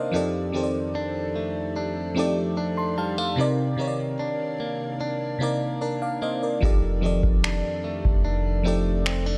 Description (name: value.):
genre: contemporary R&B.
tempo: 74 BPM.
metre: 4/4.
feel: straight.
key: unclear.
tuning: A4 = 443 Hz.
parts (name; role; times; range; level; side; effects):
FM electric piano with soft pad layer; accompaniment; 0.0-9.4 s; C3 to C6; -29 LUFS; equal; chorus.
direct-recorded clean electric guitar; arpeggios; 0.0-9.4 s; F2 to D4; -32 LUFS; equal; tape echo.
long sustained 808-style bass; bass; 6.6-9.4 s; F1; -28 LUFS; equal; none.
booming analog drum machine; drums; 6.6-9.2 s; finger snaps, kick drum; -25 LUFS; equal; none.
room: light reverb.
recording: none.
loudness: -25 LUFS.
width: mono.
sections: 0.0-9.4 A section.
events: none.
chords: 0.1 F13; 3.4 Cm9; 6.6 F13.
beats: | 0.14 0.95 1.76 2.57 | 3.38 4.20 5.01 5.82 | 6.63 7.44 8.25 9.06.